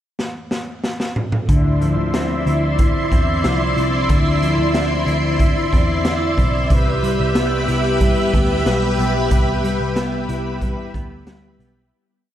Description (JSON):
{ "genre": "dream pop", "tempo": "92 BPM", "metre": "4/4", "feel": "straight", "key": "C major", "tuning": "A4 = 440 Hz", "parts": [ { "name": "raw garage drum kit", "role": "drums", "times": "0.2-11.7 s", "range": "hi-hat, kick drum, snare drum, toms", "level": "-20 LUFS", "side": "equal", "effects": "none" }, { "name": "string machine, violins", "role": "sustained chords", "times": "1.5-11.9 s", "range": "E4 to C6", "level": "-20 LUFS", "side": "equal", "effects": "ensemble chorus" }, { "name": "electric guitar at the edge of break-up", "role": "arpeggios", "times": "1.5-12.3 s", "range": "D3 to E4", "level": "-22 LUFS", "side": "left 1 dB", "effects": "analog chorus, analog delay" }, { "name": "vintage muted picked electric bass", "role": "bass", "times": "1.5-11.9 s", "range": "B1 to E2", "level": "-22 LUFS", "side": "equal", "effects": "none" } ], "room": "moderate huge ambient reverb, RT60 8.6 s", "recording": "dreamy mix soaked in reverb", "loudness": "-16 LUFS", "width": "side -11 dB against mid", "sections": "0.0-1.5 pickup bar; 1.5-11.9 verse", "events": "drum fill 0.2-1.5; fade-out 9.3-11.9", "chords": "0.0 N.C.; 1.5 Dm9; 6.7 Cmaj7", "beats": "0.18 0.83 | 1.49 2.14 2.79 3.44 | 4.09 4.75 5.40 6.05 | 6.70 7.36 8.01 8.66 | 9.31 9.96 10.62 11.27" }